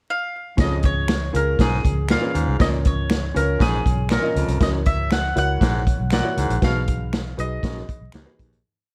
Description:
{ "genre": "uptempo 1960s-style soul", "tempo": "119 BPM", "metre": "4/4", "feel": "straight", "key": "Db mixolydian", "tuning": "A4 = 442 Hz", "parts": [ { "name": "mandolin", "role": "melody", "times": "0.1-8.1 s", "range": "Ab4 to Gb5", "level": "-29 LUFS", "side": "equal", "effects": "analog delay" }, { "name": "clear concert grand piano", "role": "accompaniment", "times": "0.6-8.5 s", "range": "Db4 to Eb5", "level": "-31 LUFS", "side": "equal", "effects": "none" }, { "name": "raspy baritone saxophone", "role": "riff", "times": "0.6-8.6 s", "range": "Eb2 to Cb3", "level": "-31 LUFS", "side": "equal", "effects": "none" }, { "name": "vintage muted fingered electric bass", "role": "bass", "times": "0.6-8.6 s", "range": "Bb1 to Eb2", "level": "-26 LUFS", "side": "equal", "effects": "none" }, { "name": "vintage drum kit", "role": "drums", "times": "0.6-8.6 s", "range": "hi-hat, kick drum, snare drum", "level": "-24 LUFS", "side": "equal", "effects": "none" }, { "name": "finger snap", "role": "percussion", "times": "1.1-8.2 s", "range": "none", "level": "-36 LUFS", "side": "equal", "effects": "none" } ], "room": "studio reverb", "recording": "dark, warm production, vinyl crackle", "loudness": "-21 LUFS", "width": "mono", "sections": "0.0-0.6 pickup bar; 0.6-8.6 verse", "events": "fade-out 6.6-8.6", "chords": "0.0 N.C.; 0.6 Db; 2.6 Bbm/Db; 4.6 Gb7/Db; 6.6 Cb6" }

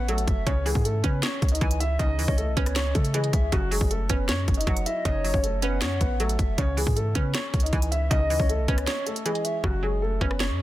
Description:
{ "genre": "hip hop, trap", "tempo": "157 BPM", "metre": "4/4", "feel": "half-time", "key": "F# dorian", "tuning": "A4 = 440 Hz", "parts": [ { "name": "dark baby grand piano", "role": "melody", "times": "0.0-10.6 s", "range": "F#3 to E5", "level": "-30 LUFS", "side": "left 1 dB", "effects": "digital delay" }, { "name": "hollow clarinet-like synth lead", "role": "second line", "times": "0.0-9.6 s", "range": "C#5 to G#5", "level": "-34 LUFS", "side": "left 1 dB", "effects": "chorus, phaser, digital delay" }, { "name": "hollow square pluck", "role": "accompaniment", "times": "0.0-10.6 s", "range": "C#3 to C#5", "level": "-33 LUFS", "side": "right 4 dB", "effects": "chorus" }, { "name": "clean 808-style bass", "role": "bass", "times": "0.0-10.6 s", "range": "F#1 to C#3", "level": "-27 LUFS", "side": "equal", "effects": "none" }, { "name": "trap drum kit", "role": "drums", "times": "0.1-10.5 s", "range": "handclaps, hi-hat, kick drum, rim click, snare drum", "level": "-26 LUFS", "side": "equal", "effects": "none" } ], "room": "digital ambience", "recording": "dense, heavily limited modern master", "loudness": "-22 LUFS", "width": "side -15 dB against mid", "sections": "0.0-9.6 A section", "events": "break 8.9-9.6; hi-hats muted 9.6-10.6", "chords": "0.5 C#m; 3.5 F#m; 6.6 C#m; 9.6 F#m" }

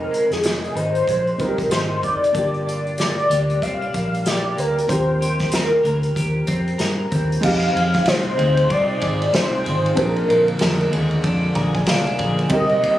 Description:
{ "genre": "indie pop, bedroom pop", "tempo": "94 BPM", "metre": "4/4", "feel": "swing 60% on 16ths", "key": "F dorian", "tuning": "A4 = 440 Hz", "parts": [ { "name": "warm velvety synth lead", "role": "melody", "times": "0.0-13.0 s", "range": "Ab4 to F5", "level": "-20 LUFS", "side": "equal", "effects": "ensemble chorus, digital delay" }, { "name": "dark upright piano", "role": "accompaniment", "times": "0.0-13.0 s", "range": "Ab3 to Bb5", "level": "-28 LUFS", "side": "right 1 dB", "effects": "cassette tape" }, { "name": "electric guitar through a small old amp", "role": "accompaniment", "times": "0.0-13.0 s", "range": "F2 to Bb4", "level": "-28 LUFS", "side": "left 2 dB", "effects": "lush chorus, vibrato effect" }, { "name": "vintage muted fingered electric bass", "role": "bass", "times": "0.0-13.0 s", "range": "F1 to G2", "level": "-23 LUFS", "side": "equal", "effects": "none" }, { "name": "unplugged drum kit", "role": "drums", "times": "0.1-13.0 s", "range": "crash cymbal, hi-hat, kick drum, ride cymbal, snare drum", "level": "-25 LUFS", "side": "equal", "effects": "none" }, { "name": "warm analog pad", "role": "sustained chords", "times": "7.4-13.0 s", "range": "C3 to G4", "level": "-28 LUFS", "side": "equal", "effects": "chorus" } ], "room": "light reverb, small room ambience", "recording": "recorded on a phone in the room, studio reverb, compression", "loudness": "-17 LUFS", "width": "side -13 dB against mid", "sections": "0.0-7.4 A section; 7.4-13.0 B section", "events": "upright piano fill 11.2-12.5", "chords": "0.0 Fm7; 2.3 Gm7; 4.9 Eb6; 7.4 Fm7; 10.0 Bb7" }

